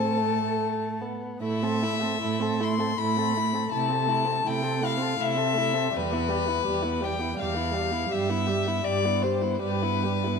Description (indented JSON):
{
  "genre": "classical, slow romantic movement for string quartet",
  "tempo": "81 BPM",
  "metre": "3/4",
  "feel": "uneven beats, rubato",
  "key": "A minor",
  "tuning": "A4 = 440 Hz",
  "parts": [
    { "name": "rich violin", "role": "melody", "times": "0.0-10.4 s", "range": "B4 to C6", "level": "-27 LUFS", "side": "left 9 dB", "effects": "none" },
    { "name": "dark violin", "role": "second line", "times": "0.0-10.4 s", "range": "A3 to A4", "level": "-32 LUFS", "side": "equal", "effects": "none" },
    { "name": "dark viola", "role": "accompaniment", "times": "0.0-10.4 s", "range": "G3 to A4", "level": "-32 LUFS", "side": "right 3 dB", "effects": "none" },
    { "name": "dark cello", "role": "bass", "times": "0.0-10.3 s", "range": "E2 to C3", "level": "-29 LUFS", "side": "right 5 dB", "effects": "none" }
  ],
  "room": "moderate scoring stage reverb, RT60 1.5 s",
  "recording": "none",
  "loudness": "-24 LUFS",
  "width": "side -5 dB against mid",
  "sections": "0.0-1.4 A section; 1.4-10.4 B section",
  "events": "none",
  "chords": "0.0 N.C.; 1.4 Am; 3.7 Am/C; 5.9 Em; 8.1 Em/G"
}